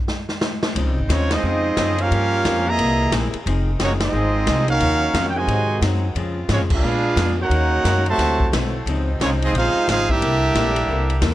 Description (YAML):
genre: jazz, big band swing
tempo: 178 BPM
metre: 4/4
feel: swing 62% on 8ths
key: Db major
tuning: A4 = 441 Hz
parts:
  - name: swinging big-band drum kit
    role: drums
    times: 0.1-11.3 s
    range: crash cymbal, hi-hat, kick drum, ride cymbal, snare drum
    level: -25 LUFS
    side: equal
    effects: vintage 12-bit sampler grit
  - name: archtop guitar, miked and amplified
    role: accompaniment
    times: 0.8-11.3 s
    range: G2 to B4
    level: -29 LUFS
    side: left 5 dB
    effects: none
  - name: mellow saxophone section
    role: sustained chords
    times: 0.8-11.3 s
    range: C3 to Gb4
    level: -32 LUFS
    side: equal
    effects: none
  - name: upright bass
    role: bass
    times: 0.8-11.3 s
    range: F1 to Bb2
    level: -21 LUFS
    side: equal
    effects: none
  - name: bright trumpet section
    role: melody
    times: 1.1-11.2 s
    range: Ab3 to Bb5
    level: -22 LUFS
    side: right 1 dB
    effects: analog delay
  - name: mellow trombone section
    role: second line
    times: 1.1-11.2 s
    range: Bb2 to Gb4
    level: -24 LUFS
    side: right 3 dB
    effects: none
room: light reverb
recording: none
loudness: -17 LUFS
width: side -14 dB against mid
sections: 0.8-11.3 A section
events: band accent 1.3, 4.0, 6.7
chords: 0.0 N.C.; 0.8 Dbmaj9; 2.1 Gm7b5; 2.8 C7alt; 3.5 Fm7; 4.8 Ebm9; 5.5 Ab7; 6.2 Dbmaj7; 6.8 Bb7b9; 7.5 Ebm7; 8.2 D13; 8.9 Dbmaj9; 10.2 C13